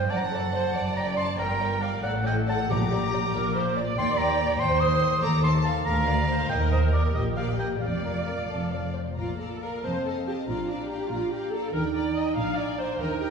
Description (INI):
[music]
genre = quick classical-period movement for symphony orchestra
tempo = 94 BPM (dotted quarters)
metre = 6/8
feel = rubato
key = G minor, Bb major from 4.0 s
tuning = A4 = 441 Hz
[part]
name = warm oboe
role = second line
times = 0.0-8.9 s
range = D5 to Eb6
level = -29 LUFS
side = right 1 dB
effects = none
[part]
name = warm studio viola section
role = accompaniment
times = 0.0-13.3 s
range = D4 to F5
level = -30 LUFS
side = right 1 dB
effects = none
[part]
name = warm studio cello section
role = bass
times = 0.0-13.3 s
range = D2 to Eb3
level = -31 LUFS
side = left 1 dB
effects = none
[part]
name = warm studio double bass section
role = bass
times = 0.0-13.3 s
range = F1 to Eb2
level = -30 LUFS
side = right 1 dB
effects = none
[part]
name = dark studio violin section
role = melody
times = 0.1-13.3 s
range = A4 to Bb5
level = -39 LUFS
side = left 2 dB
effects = none
[part]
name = bright studio violin section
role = second line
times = 0.1-13.3 s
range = Bb4 to C6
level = -35 LUFS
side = left 2 dB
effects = none
[part]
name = timpani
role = percussion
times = 2.7-3.3 s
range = Bb2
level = -34 LUFS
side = left 1 dB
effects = none
[part]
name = mellow French horn section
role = sustained chords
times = 9.2-13.3 s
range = Bb3 to Eb4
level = -31 LUFS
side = right 2 dB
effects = none
[sound]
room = wet concert hall reverb, RT60 1.9 s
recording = heard from further back in the room, studio ambience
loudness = -24 LUFS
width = side -6 dB against mid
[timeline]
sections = 0.0-9.2 A section; 9.2-13.3 B section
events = none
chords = 0.1 D/F#; 1.4 Gm; 2.0 D5/A; 2.7 Gm/Bb; 4.0 Cm7/Eb; 5.2 Cm13/Eb (rootless); 5.9 Bb/D; 6.5 Eb; 7.8 Bb/F; 9.2 Bb; 9.8 F7; 10.5 Bb; 11.7 Ebmaj7; 12.4 Bb7